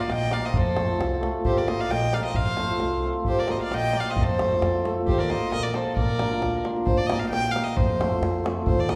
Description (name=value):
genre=balkan folk, Balkan wedding band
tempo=133 BPM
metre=2/4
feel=straight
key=unclear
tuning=A4 = 441 Hz
part: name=rich violin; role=melody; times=0.0-9.0 s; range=C5 to G5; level=-30 LUFS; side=equal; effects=none
part: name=rich violin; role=second line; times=0.0-6.6 s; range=G4 to Eb5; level=-34 LUFS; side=equal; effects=none
part: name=upright bass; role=bass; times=0.1-8.9 s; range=Bb1 to F2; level=-32 LUFS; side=equal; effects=none
part: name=davul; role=percussion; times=0.1-9.0 s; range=none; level=-31 LUFS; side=equal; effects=none
part: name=cimbalom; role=accompaniment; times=0.3-9.0 s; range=A3 to Bb4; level=-30 LUFS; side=equal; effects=none
room=wet recital hall reverb, RT60 1.7 s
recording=heard from further back in the room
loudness=-24 LUFS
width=mono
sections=0.0-6.9 A section; 6.9-9.0 A section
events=none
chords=0.0 Eb; 0.5 F; 1.5 Eb; 2.4 F; 3.3 Eb; 4.2 F; 5.1 Eb; 6.0 Bb; 6.9 Eb; 7.8 F